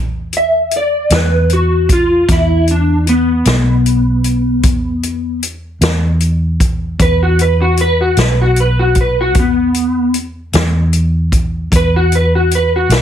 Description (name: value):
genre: slow blues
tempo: 51 BPM (dotted quarters)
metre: 12/8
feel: straight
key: unclear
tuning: A4 = 439 Hz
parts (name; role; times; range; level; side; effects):
- vintage muted fingered electric bass; bass; 0.0-13.0 s; B1 to E2; -14 LUFS; equal; none
- swinging big-band drum kit; drums; 0.3-13.0 s; hi-hat, kick drum, snare drum; -16 LUFS; equal; none
- electric guitar through a small old amp; melody; 0.4-13.0 s; B3 to E5; -14 LUFS; left 1 dB; ensemble chorus
room: light reverb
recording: heavily compressed radio sound, multiband compression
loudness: -11 LUFS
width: side -10 dB against mid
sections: 0.0-13.0 A section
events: clean electric guitar solo 0.0-13.0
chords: 0.0 E5